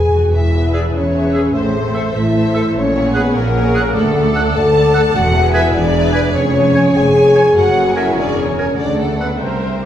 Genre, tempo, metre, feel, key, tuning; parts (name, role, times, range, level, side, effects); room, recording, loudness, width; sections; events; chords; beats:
cinematic, heroic adventure film score; 99 BPM (dotted quarters); 6/8; straight; E mixolydian; A4 = 441 Hz
rich studio violin section; melody; 0.0-9.9 s; A4 to A5; -25 LUFS; left 1 dB
concert flute; second line; 0.0-9.9 s; A4 to A5; -23 LUFS; equal
dark symphonic violin section; second line; 0.0-9.9 s; G4 to G#5; -26 LUFS; equal
warm symphonic viola section; accompaniment; 0.0-9.8 s; F#4 to D5; -24 LUFS; equal
dark French horn section; sustained chords; 0.0-9.9 s; G3 to A4; -16 LUFS; left 2 dB
concert harp; arpeggios; 0.0-9.9 s; E2 to A5; -24 LUFS; left 4 dB
rich studio double bass section; bass; 0.0-9.8 s; E1 to D2; -21 LUFS; right 3 dB
timpani; percussion; 0.0-0.3, 5.1-5.7 s; E2; -19 LUFS; equal
rich studio cello section; bass; 0.3-9.8 s; C2 to A#2; -22 LUFS; right 2 dB
bright clarinet; second line; 0.7-9.9 s; G4 to C#5; -26 LUFS; left 1 dB
warm cor anglais; second line; 0.7-9.9 s; E5 to G#5; -26 LUFS; right 3 dB
wet recital hall reverb, RT60 1.6 s; recorded in a church or concert hall; -12 LUFS; side -10 dB against mid
0.3-9.9 A section
timpani fill 0.0-0.3
0.3 E; 1.5 Am; 2.8 F#add9/A#; 3.9 D; 5.2 E; 6.3 C#/E#; 7.6 F#add9; 8.8 D
| 0.33 0.94 | 1.54 2.15 | 2.75 3.35 | 3.95 4.55 | 5.15 5.75 | 6.34 6.96 | 7.57 8.17 | 8.78 9.40